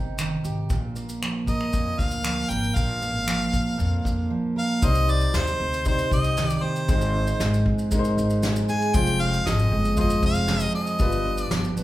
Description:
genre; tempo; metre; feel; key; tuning
acoustic pop; 117 BPM; 4/4; straight; C minor; A4 = 442 Hz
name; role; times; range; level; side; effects
picked steel-string acoustic guitar; accompaniment; 0.0-11.8 s; F2 to Bb4; -26 LUFS; right 2 dB; none
upright bass; bass; 0.0-11.8 s; F1 to F2; -27 LUFS; left 1 dB; none
soft brush drum kit; drums; 0.2-11.8 s; finger snaps, kick drum, shaker, snare drum; -27 LUFS; equal; none
clear harmonica; melody; 1.5-11.7 s; C5 to Ab5; -27 LUFS; equal; none
warm upright piano; accompaniment; 4.8-11.8 s; G3 to C5; -30 LUFS; left 3 dB; none
room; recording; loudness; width
wet large studio reverb, RT60 0.8 s; band playing live in one room; -21 LUFS; side -15 dB against mid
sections
0.0-4.8 A section; 4.8-11.8 B section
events
none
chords
0.0 Cm; 0.7 Bb; 4.8 Cm; 6.9 Ab; 8.9 Fm; 11.0 G7

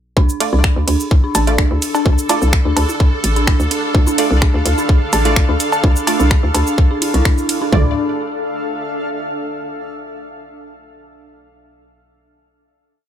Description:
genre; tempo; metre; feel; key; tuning
minimal techno; 127 BPM; 4/4; straight; D minor; A4 = 440 Hz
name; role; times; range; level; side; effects
dark detuned synth bell; riff; 0.2-7.9 s; D4 to E4; -22 LUFS; right 1 dB; chorus, phaser, sidechain pumping, digital delay
hollow knocking FM bass; bass; 0.2-7.9 s; A1 to D2; -16 LUFS; equal; tube saturation, sidechain pumping
minimal click drum kit; drums; 0.2-7.8 s; kick drum, toms; -13 LUFS; equal; none
granular cloud pad; texture; 1.9-9.6 s; D4 to F5; -23 LUFS; equal; built-in reverb, sidechain pumping
swarming drone; texture; 1.0-7.7 s; A4; -29 LUFS; right 1 dB; built-in reverb, sidechain pumping
techno drum kit; drums; 0.3-7.6 s; cabasa, finger snaps, hi-hat, ride cymbal; -21 LUFS; right 2 dB; none
filtered dub chord stab; stabs; 0.4-7.9 s; A3 to D5; -22 LUFS; right 3 dB; analog chorus, ping-pong delay
bongos and cowbell; percussion; 0.5-7.7 s; none; -22 LUFS; equal; ping-pong delay
room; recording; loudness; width
light reverb; none; -13 LUFS; side -10 dB against mid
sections
0.2-7.7 drop; 7.7-9.6 final chord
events
drop 0.2-7.7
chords
0.2 Dm

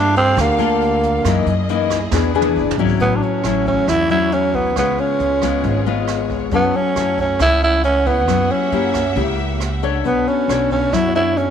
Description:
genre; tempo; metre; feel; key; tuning
bossa nova; 136 BPM; 4/4; straight; A major from 3.0 s; A4 = 442 Hz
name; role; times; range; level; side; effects
growling tenor saxophone; melody; 0.0-11.5 s; Bb3 to E4; -17 LUFS; right 2 dB; none
nylon-string guitar; accompaniment; 0.0-11.5 s; Gb2 to C#5; -20 LUFS; left 10 dB; none
warm studio string section; sustained chords; 0.0-11.5 s; A3 to F#5; -28 LUFS; right 1 dB; none
upright bass; bass; 0.0-11.5 s; Gb1 to G2; -22 LUFS; right 2 dB; none
jazz brush drum kit; drums; 0.2-11.5 s; hi-hat, kick drum, rim click, snare drum, toms; -28 LUFS; right 6 dB; none
room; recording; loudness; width
light reverb; 1960s-style stereo with parts hard left and right; -15 LUFS; side -8 dB against mid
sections
0.0-3.0 A section; 3.0-11.5 B section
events
tenor saxophone solo 0.0-3.0; drum fill 2.1-3.0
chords
0.0 Gm9; 1.3 Gb13; 2.1 E7; 3.0 A6; 4.8 C#7; 6.5 F#m7; 8.3 F#7b9; 10.0 Bm9

